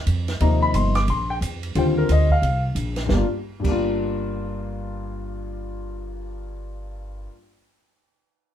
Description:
modal jazz; 178 BPM; 4/4; swing 62% on 8ths; G minor; A4 = 440 Hz
upright bass; bass; 0.0-7.3 s; G1 to F2; -24 LUFS; equal
compact cocktail drum kit; drums; 0.1-3.7 s; crash cymbal, hi-hat, kick drum, ride cymbal, snare drum; -30 LUFS; right 2 dB
warm grand piano; accompaniment; 0.4-7.3 s; G2 to D6; -24 LUFS; left 3 dB
wet club reverb, RT60 0.5 s; heard from further back in the room; -20 LUFS; side -10 dB against mid
0.0-3.1 A section; 3.1-5.8 B section
0.0 Ebadd9/G; 3.1 Gm7

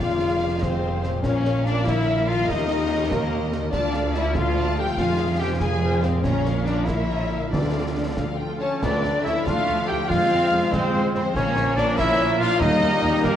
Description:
cinematic, heroic adventure film score; 96 BPM (dotted quarters); 6/8; straight; A4 = 438 Hz
warm symphonic violin section; melody; 0.0-13.4 s; Bb4 to Bb5; -32 LUFS; left 4 dB
dark symphonic violin section; second line; 0.0-13.4 s; Bb4 to Ab5; -30 LUFS; left 2 dB
rich symphonic viola section; accompaniment; 0.0-13.4 s; G3 to F5; -32 LUFS; right 2 dB
warm French horn section; sustained chords; 0.0-13.4 s; Bb3 to Ab4; -26 LUFS; left 3 dB
concert harp; arpeggios; 0.0-13.4 s; F2 to Bb5; -32 LUFS; left 5 dB
rich symphonic cello section; bass; 0.0-13.4 s; D2 to C4; -29 LUFS; right 2 dB
rich symphonic double bass section; bass; 0.0-13.3 s; F1 to F2; -28 LUFS; right 3 dB
concert snare drum, concert bass drum and clash cymbals; drums; 0.0-13.4 s; -31 LUFS; equal
timpani; percussion; 7.5-9.4 s; D3; -30 LUFS; right 1 dB
silver concert flute; second line; 8.6-13.4 s; Bb4 to G5; -32 LUFS; left 1 dB
warm clarinet; second line; 8.6-13.4 s; Bb3 to G4; -30 LUFS; left 1 dB
warm cor anglais; second line; 8.6-13.4 s; Bb3 to G4; -31 LUFS; right 2 dB
mellow trumpet section; stabs; 8.6-13.4 s; Bb4 to G5; -27 LUFS; right 1 dB
dark trombone section; sustained chords; 8.8-13.4 s; F3 to Bb3; -30 LUFS; right 3 dB
wet concert hall reverb, RT60 2.3 s; worn, warbling old tape, cassette tape, warbly pitch drift; -20 LUFS; side -10 dB against mid
0.0-8.8 A section; 8.8-13.4 B section
0.0 Fm; 1.2 Bbm; 2.5 Eb; 3.7 Dm; 5.0 Fm; 6.2 Bbm; 7.5 Dm; 10.1 Fm; 11.3 Bbm; 12.6 Eb

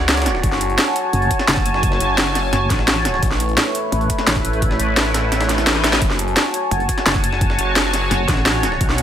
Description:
dark technical drum and bass; 172 BPM; 4/4; straight; F# minor; A4 = 440 Hz
sweeping resonant pad; sustained chords; 0.0-9.0 s; A3 to A5; -20 LUFS; equal; chorus, sidechain pumping
phased detuned saw bass; bass; 0.0-9.0 s; F#1 to C#2; -22 LUFS; equal; phaser, overdrive, sidechain pumping
breakbeat sampler-style drum kit; drums; 0.0-9.0 s; hi-hat, snare drum; -28 LUFS; equal
drum and bass drum kit; drums; 0.1-9.0 s; hi-hat, snare drum; -19 LUFS; equal; overdrive
electronic kick drum; drums; 0.4-8.9 s; -20 LUFS; equal; overdrive
pulsing pluck wobble bass; bass; 1.1-8.8 s; F#1 to A1; -21 LUFS; equal; chorus, tube saturation
reverse cymbal; sound effects; 5.5-6.0 s; -27 LUFS; left 4 dB
light reverb, digital ambience; -15 LUFS; side -10 dB against mid
0.0-9.0 A section
kick drops out 5.3-6.0; reverse cymbal 5.5-6.0; drum fill 5.8
0.4 F#m; 3.2 A; 6.0 F#m

